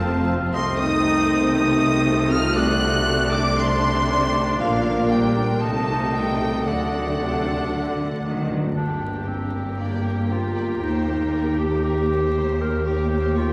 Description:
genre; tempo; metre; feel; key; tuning
classical; 118 BPM; 4/4; straight; G minor; A4 = 440 Hz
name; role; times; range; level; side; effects
clear chamber violin section; melody; 0.0-13.4 s; A4 to F#6; -32 LUFS; equal; none
concert flute; second line; 0.0-8.5 s; F5 to F#6; -31 LUFS; equal; none
rich symphonic violin section; second line; 0.0-13.5 s; Bb4 to F#6; -37 LUFS; equal; none
warm clarinet; second line; 0.0-13.5 s; A3 to Bb4; -30 LUFS; equal; none
warm oboe; second line; 0.0-8.5 s; D5 to F5; -33 LUFS; equal; none
rich studio viola section; accompaniment; 0.0-13.5 s; Bb3 to Bb4; -30 LUFS; equal; none
dark French horn section; sustained chords; 0.0-8.5 s; F3 to F#4; -29 LUFS; equal; none
warm trombone section; sustained chords; 0.0-8.5 s; D3 to C4; -34 LUFS; equal; none
clear studio double bass section; bass; 0.0-13.5 s; F1 to Eb2; -30 LUFS; equal; none
rich symphonic cello section; bass; 0.0-13.5 s; Eb2 to Eb3; -30 LUFS; equal; none
timpani; percussion; 6.7-8.7 s; D3; -33 LUFS; equal; none
room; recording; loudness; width
wet church reverb, RT60 3.9 s; recorded in a church or concert hall, vinyl crackle; -22 LUFS; mono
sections
0.0-8.8 A section; 8.8-13.5 B section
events
timpani fill 6.7-8.8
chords
0.0 F; 0.5 Adim/C; 2.6 D7/C; 4.6 Gm/Bb; 5.6 Adim/C; 6.7 D; 8.8 Gm; 10.8 Eb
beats
0.04 | 0.54 1.05 1.55 2.06 | 2.57 3.07 3.58 4.09 | 4.60 5.11 5.62 6.14 | 6.67 7.20 7.72 8.24 | 8.77 9.28 9.80 10.31 | 10.83 11.34 11.84 12.35 | 12.86 13.36

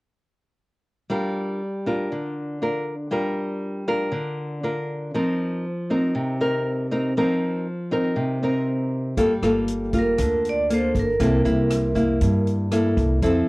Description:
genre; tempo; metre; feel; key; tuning
bossa nova; 119 BPM; 4/4; straight; G minor; A4 = 440 Hz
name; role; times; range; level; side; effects
nylon-string guitar; accompaniment; 1.1-13.5 s; G2 to Bb4; -22 LUFS; equal; none
upright bass; bass; 9.2-13.5 s; G1 to G2; -24 LUFS; equal; none
swinging big-band drum kit; drums; 9.2-13.3 s; hi-hat, kick drum, rim click; -29 LUFS; equal; none
vibraphone with medium hard mallets; melody; 10.0-12.4 s; Bb4 to D5; -24 LUFS; right 2 dB; none
room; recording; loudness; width
light reverb; worn, warbling old tape, cassette tape, warbly pitch drift; -21 LUFS; side -22 dB against mid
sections
1.1-9.2 A section; 9.2-13.5 B section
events
none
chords
1.1 Gm7; 5.1 F7sus4; 9.2 Gm9; 11.2 C6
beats
| 1.10 1.60 2.10 2.61 | 3.11 3.62 4.12 4.63 | 5.13 5.64 6.14 6.65 | 7.15 7.66 8.16 8.67 | 9.17 9.68 10.18 10.69 | 11.19 11.70 12.20 12.71 | 13.21

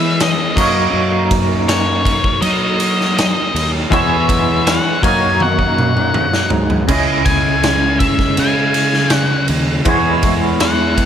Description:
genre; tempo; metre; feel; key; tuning
psychedelic rock; 81 BPM; 4/4; straight; unclear; A4 = 441 Hz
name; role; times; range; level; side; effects
octave-fuzz lead guitar; melody; 0.0-11.1 s; C#5 to G#5; -19 LUFS; left 4 dB; distortion, digital delay
string machine, violas; sustained chords; 0.0-11.1 s; A#3 to C#5; -28 LUFS; right 2 dB; none
twangy electric guitar; riff; 0.0-11.1 s; C#3 to D#5; -18 LUFS; equal; tremolo, double-tracked left and right
fuzz fingered electric bass; bass; 0.0-11.0 s; C#2 to F#3; -20 LUFS; equal; overdrive
raw garage drum kit; drums; 0.2-11.1 s; crash cymbal, kick drum, ride cymbal, snare drum, toms; -17 LUFS; right 1 dB; none
room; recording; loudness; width
small room ambience; none; -12 LUFS; side -9 dB against mid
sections
0.0-11.1 A section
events
drum fill 5.4-6.9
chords
0.0 E6; 0.6 F#6; 3.9 E6; 5.0 F#6; 6.9 C#madd9; 9.9 E6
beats
0.20 | 0.95 1.69 2.43 3.17 | 3.92 4.66 5.40 6.15 | 6.89 7.63 8.38 9.12 | 9.86 10.61

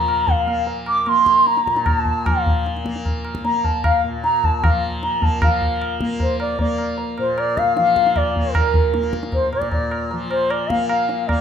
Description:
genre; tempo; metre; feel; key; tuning
indian classical, Hindustani; 153 BPM; 4/4; straight; Bb raga hamsadhwani; A4 = 440 Hz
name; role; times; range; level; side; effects
mellow bansuri; melody; 0.0-11.4 s; Bb4 to D6; -19 LUFS; equal; none
tanpura; drone; 0.0-11.4 s; Bb2 to Bb3; -26 LUFS; left 2 dB; none
tabla; percussion; 0.1-11.4 s; none; -22 LUFS; equal; none
room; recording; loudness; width
moderate recital hall reverb, RT60 1.5 s; minimal, uncompressed stereo recording; -17 LUFS; side -8 dB against mid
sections
0.0-5.4 A section; 5.4-11.4 B section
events
none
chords
none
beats
0.28 | 0.68 1.07 1.47 1.86 | 2.26 2.65 3.05 3.45 | 3.84 4.23 4.63 5.02 | 5.42 5.81 6.20 6.59 | 6.99 7.38 7.77 8.16 | 8.55 8.94 9.33 9.72 | 10.11 10.50 10.89 11.28

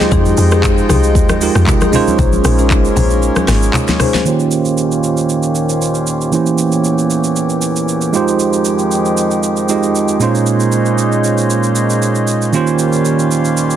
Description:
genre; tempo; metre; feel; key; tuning
amapiano; 116 BPM; 4/4; swing 55% on 16ths; F minor; A4 = 437 Hz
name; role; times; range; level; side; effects
bell-like tine electric piano; accompaniment; 0.0-13.8 s; Bb2 to Eb5; -15 LUFS; right 5 dB; low-pass filter
hand-pumped harmonium; sustained chords; 0.0-13.8 s; Eb2 to G5; -19 LUFS; left 3 dB; sidechain pumping, low-pass filter
marimba with soft mallets; stabs; 0.0-4.2 s; Db4 to C5; -20 LUFS; left 7 dB; ping-pong delay
afro-pop drum kit; drums; 0.0-13.8 s; handclaps, hi-hat, kick drum, rim click, shaker, snare drum; -18 LUFS; equal; vintage 12-bit sampler grit
congas; percussion; 0.0-4.3 s; none; -20 LUFS; left 3 dB; none
woody log drum bass; bass; 0.1-3.7 s; Ab1 to F2; -14 LUFS; left 1 dB; none
room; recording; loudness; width
light reverb; dense, heavily limited modern master; -11 LUFS; side -10 dB against mid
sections
0.0-4.3 A section; 4.3-13.8 B section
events
drop 0.0-4.3; kick muted 3.2-4.3; filter sweep 4.3-13.8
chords
0.0 Fm9; 1.9 Bbm11; 4.3 Eb13; 6.3 C7b9/E; 8.1 Fm9; 10.2 Bbm11; 12.5 Eb13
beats
| 0.12 0.64 1.15 1.67 | 2.19 2.71 3.22 3.74 | 4.26 4.78 5.29 5.81 | 6.33 6.84 7.36 7.88 | 8.39 8.91 9.43 9.95 | 10.46 10.98 11.50 12.02 | 12.53 13.05 13.57

